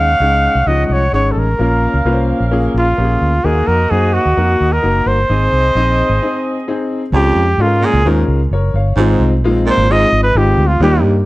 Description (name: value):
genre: soul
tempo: 130 BPM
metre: 4/4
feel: straight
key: Db major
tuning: A4 = 440 Hz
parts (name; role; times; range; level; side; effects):
- warm trumpet; melody; 0.0-11.0 s; F4 to F5; -15 LUFS; equal; none
- mellow horn section; second line; 0.0-6.9 s; Bb3 to Gb5; -24 LUFS; right 1 dB; none
- warm grand piano; accompaniment; 0.0-11.2 s; F3 to F5; -18 LUFS; left 2 dB; none
- vintage muted fingered electric bass; bass; 0.0-11.2 s; Gb1 to Ab2; -15 LUFS; equal; none
- warm baritone saxophone; riff; 7.1-11.1 s; Eb2 to Bb2; -19 LUFS; right 3 dB; none
room: light reverb, small room ambience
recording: dark, warm production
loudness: -11 LUFS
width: side -18 dB against mid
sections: 0.0-7.1 A section; 7.1-11.3 B section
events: break 6.2-7.1; trumpet solo 7.1-11.3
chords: 0.0 Dbsus2; 1.6 Bbm; 3.4 Ebm; 5.3 Ab; 7.1 Db; 9.0 Ab6